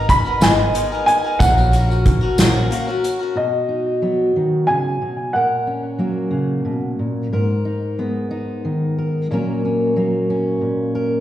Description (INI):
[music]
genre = indie folk with a building arrangement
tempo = 61 BPM (dotted quarters)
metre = 6/8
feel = straight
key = F# major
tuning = A4 = 439 Hz
[part]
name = warm upright piano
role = melody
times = 0.0-6.9 s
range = D#5 to B5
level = -19 LUFS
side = equal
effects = plate reverb, slapback echo, tape echo
[part]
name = picked swing-style acoustic guitar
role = accompaniment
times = 0.0-3.4 s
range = G#2 to A#4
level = -22 LUFS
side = left 3 dB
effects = plate reverb, slapback echo
[part]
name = upright bass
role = bass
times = 0.0-2.6 s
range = G#1 to A#1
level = -18 LUFS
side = right 1 dB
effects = none
[part]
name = unplugged drum kit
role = drums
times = 0.1-3.2 s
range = hi-hat, kick drum, snare drum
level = -17 LUFS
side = equal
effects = none
[part]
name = tambourine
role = percussion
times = 0.1-3.1 s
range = none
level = -34 LUFS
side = right 4 dB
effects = none
[part]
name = fingerpicked steel-string acoustic guitar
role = accompaniment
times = 3.4-11.2 s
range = G#2 to A#4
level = -19 LUFS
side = equal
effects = slapback echo
[sound]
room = moderate club reverb, RT60 0.8 s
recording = live gig heard through the venue's PA, recital hall reverb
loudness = -16 LUFS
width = side -12 dB against mid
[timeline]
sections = 0.0-3.4 A section; 3.4-11.2 B section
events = none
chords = 0.0 G#madd9; 1.4 F#/A#; 3.4 B; 5.3 F#/A#; 7.3 G#madd9; 9.3 F#/A#